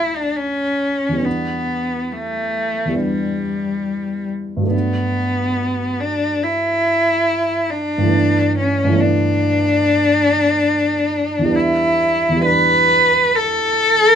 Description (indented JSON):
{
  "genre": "classical, impressionist duo for cello and grand piano",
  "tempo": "70 BPM",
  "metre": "4/4",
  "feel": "rubato",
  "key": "unclear",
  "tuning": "A4 = 444 Hz",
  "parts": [
    { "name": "rich cello", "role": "melody", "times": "0.0-14.2 s", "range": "G3 to B4", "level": "-16 LUFS", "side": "left 1 dB", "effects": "none" },
    { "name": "dark grand piano", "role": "accompaniment", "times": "0.0-14.2 s", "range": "D2 to F#4", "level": "-21 LUFS", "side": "right 2 dB", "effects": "none" }
  ],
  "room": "moderate studio ambience, RT60 0.5 s",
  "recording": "minimal, uncompressed stereo recording",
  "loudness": "-15 LUFS",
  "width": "side -8 dB against mid",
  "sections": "0.0-14.2 A section",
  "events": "none",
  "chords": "0.0 Dadd9; 1.3 Em7; 4.7 Gmaj9; 8.1 A11/G; 11.5 Em7",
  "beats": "0.37 | 1.26 2.14 3.02 3.89 | 4.73 5.59 6.43 7.28 | 8.14 9.01 9.86 10.69 | 11.54 12.46 13.35"
}